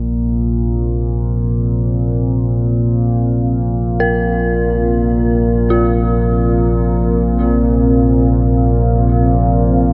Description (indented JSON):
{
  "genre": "dark ambient drone",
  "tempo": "free time",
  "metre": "none",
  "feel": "none",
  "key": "unclear",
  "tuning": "A4 = 440 Hz",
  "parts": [
    { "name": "deep dark ambient pad", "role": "sustained chords", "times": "0.8-9.9 s", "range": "C4 to F5", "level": "-21 LUFS", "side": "equal", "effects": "chorus, built-in reverb" },
    { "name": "analog drone", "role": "drone", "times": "0.0-9.9 s", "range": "Bb1 to Bb2", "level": "-16 LUFS", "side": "equal", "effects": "chorus" },
    { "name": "dark detuned synth bell", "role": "arpeggios", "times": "4.0-9.9 s", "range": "F4 to Bb4", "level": "-24 LUFS", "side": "equal", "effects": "chorus, diffuse ambient delay" }
  ],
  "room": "moderate huge ambient reverb, RT60 9.2 s",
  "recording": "none",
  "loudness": "-15 LUFS",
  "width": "mono",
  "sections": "0.0-9.9 A section",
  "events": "none",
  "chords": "0.0 Bbsus2",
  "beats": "free time"
}